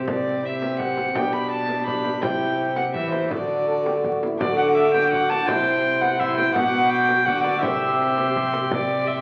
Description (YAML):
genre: classical, renaissance-style consort dance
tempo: 167 BPM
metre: 3/4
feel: straight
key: unclear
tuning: A4 = 441 Hz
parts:
  - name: warm viola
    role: second line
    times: 0.0-9.2 s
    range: F#4 to A5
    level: -26 LUFS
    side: equal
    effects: none
  - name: bright trombone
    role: accompaniment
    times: 0.0-9.2 s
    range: C4 to A4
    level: -29 LUFS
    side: equal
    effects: none
  - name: lute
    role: accompaniment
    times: 0.0-9.2 s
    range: B2 to D5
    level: -30 LUFS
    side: equal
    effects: none
  - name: rich cello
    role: bass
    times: 0.0-9.2 s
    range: B2 to E3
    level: -33 LUFS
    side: equal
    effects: none
  - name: rich violin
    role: melody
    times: 0.1-9.2 s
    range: C5 to D6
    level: -30 LUFS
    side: equal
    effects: none
  - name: frame drum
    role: percussion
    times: 0.1-8.9 s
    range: none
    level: -33 LUFS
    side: equal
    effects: none
room: wet recital hall reverb, RT60 1.6 s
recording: very old 78 rpm record, vinyl crackle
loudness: -22 LUFS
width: mono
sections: 0.0-4.4 A section; 4.4-9.2 A section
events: none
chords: 0.0 C; 1.2 G/B; 2.2 C; 3.3 D; 5.5 C; 6.5 Bm; 7.6 C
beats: | 0.08 0.44 0.80 | 1.16 1.51 1.87 | 2.23 2.58 2.94 | 3.31 3.67 4.04 | 4.40 4.76 5.12 | 5.48 5.84 6.19 | 6.55 6.90 7.26 | 7.63 7.99 8.35 | 8.71 9.07